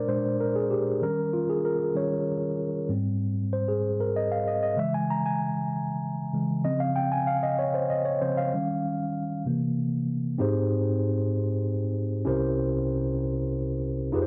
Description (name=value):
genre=gospel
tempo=64 BPM (dotted quarters)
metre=6/8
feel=straight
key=Ab major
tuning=A4 = 441 Hz
part: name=mellow tine electric piano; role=solo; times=0.0-14.3 s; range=C2 to Bb5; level=-27 LUFS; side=equal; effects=cassette tape
room=moderate booth ambience, RT60 0.2 s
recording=home recording on cassette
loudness=-27 LUFS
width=mono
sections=0.0-10.4 A section; 10.4-14.3 B section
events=tine electric piano solo 0.0-10.4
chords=0.0 Bb7; 1.0 Eb7; 2.9 Abmaj7; 4.8 Dbm; 6.6 Dbmaj7; 8.5 Eb9; 9.5 C7; 10.4 Abmaj7; 12.3 C7b9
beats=0.10 | 1.03 1.97 | 2.90 3.84 | 4.78 5.71 | 6.65 7.58 | 8.52 9.46 | 10.39 11.33 | 12.26 13.20 | 14.13